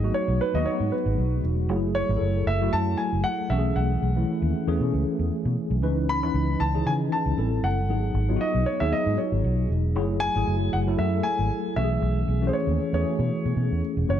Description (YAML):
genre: polished 1980s jazz-funk pop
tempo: 116 BPM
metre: 4/4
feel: swing 54% on 16ths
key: unclear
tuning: A4 = 442 Hz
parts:
  - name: warm grand piano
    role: melody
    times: 0.0-14.2 s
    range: B4 to B5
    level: -29 LUFS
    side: right 1 dB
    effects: none
  - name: tine electric piano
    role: accompaniment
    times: 0.0-14.2 s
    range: D#3 to B4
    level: -27 LUFS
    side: left 1 dB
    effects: overdrive, medium stereo tremolo, analog chorus
  - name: vintage muted fingered electric bass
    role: bass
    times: 0.0-14.2 s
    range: E1 to C#3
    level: -25 LUFS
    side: equal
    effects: none
room: light reverb, studio reverb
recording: dark, warm production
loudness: -22 LUFS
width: side -10 dB against mid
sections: 0.0-14.1 A section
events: none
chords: 0.0 G#m7; 1.7 F#m9; 3.5 B13sus4; 5.8 C#m9; 7.4 Am7; 7.9 G#m7; 10.0 F#m9; 11.8 B13sus4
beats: 0.15 0.67 1.19 | 1.70 2.22 2.74 3.25 | 3.77 4.29 4.80 5.32 | 5.83 6.35 6.87 7.38 | 7.90 8.41 8.93 9.45 | 9.96 10.48 11.00 11.51 | 12.03 12.55 13.06 13.58 | 14.10